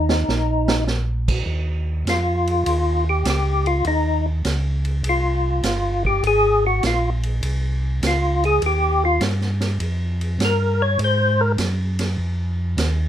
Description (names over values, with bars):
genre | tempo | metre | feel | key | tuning
soul jazz organ trio | 101 BPM | 4/4 | swing 68% on 8ths | Eb mixolydian | A4 = 440 Hz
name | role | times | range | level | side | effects
percussive tonewheel organ | melody | 0.0-11.5 s | Eb4 to Db5 | -20 LUFS | left 1 dB | slow rotary speaker, chorus vibrato
mellow tonewheel organ | bass | 0.0-13.1 s | G1 to Ab2 | -21 LUFS | equal | slow rotary speaker
vintage drum kit | drums | 0.1-13.0 s | crash cymbal, hi-hat, kick drum, ride cymbal, snare drum | -27 LUFS | right 2 dB | none
room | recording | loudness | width
light reverb | none | -18 LUFS | side -10 dB against mid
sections
0.0-1.5 A section; 1.5-13.1 B section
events
drum fill 0.0-0.9; tonewheel organ solo 1.5-13.1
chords
0.0 Eb5; 1.5 Eb13; 6.2 Abadd9; 8.6 Ebadd9; 11.0 Ab13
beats
0.28 0.88 | 1.47 2.07 2.66 3.26 | 3.85 4.45 5.04 5.64 | 6.24 6.83 7.43 8.02 | 8.62 9.21 9.81 10.41 | 11.00 11.60 12.20 12.79